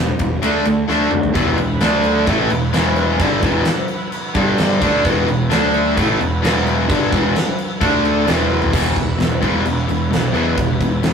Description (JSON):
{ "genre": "hard rock", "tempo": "130 BPM", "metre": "4/4", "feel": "straight", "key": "unclear", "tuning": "A4 = 438 Hz", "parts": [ { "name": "cranked stack guitar", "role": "riff", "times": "0.0-11.1 s", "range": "E2 to D4", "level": "-20 LUFS", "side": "left 4 dB", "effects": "overdrive" }, { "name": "overdriven semi-hollow guitar", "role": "riff", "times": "0.0-11.1 s", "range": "E2 to D4", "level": "-20 LUFS", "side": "right 3 dB", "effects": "none" }, { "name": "fuzz picked electric bass", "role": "bass", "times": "0.0-11.1 s", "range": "E1 to E2", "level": "-20 LUFS", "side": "equal", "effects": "overdrive" }, { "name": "huge arena drum kit", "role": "drums", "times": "0.2-11.1 s", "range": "crash cymbal, kick drum, ride cymbal, snare drum, toms", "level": "-20 LUFS", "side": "equal", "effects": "none" }, { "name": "overdriven tonewheel organ", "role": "sustained chords", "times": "1.4-11.1 s", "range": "G3 to F#5", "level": "-31 LUFS", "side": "right 2 dB", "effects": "none" } ], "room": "moderate studio reverb, RT60 0.6 s", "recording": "rough rehearsal-room recording, tube saturation", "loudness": "-14 LUFS", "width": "side -6 dB against mid", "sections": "0.0-1.4 A section; 1.4-8.7 B section; 8.7-11.1 C section", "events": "drum fill 0.9-1.4, 8.5", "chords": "0.4 D5; 1.4 E5; 1.8 D5; 2.3 E5; 4.3 G5; 4.8 E5; 5.5 D5; 6.0 E5; 7.8 D5; 8.3 E5" }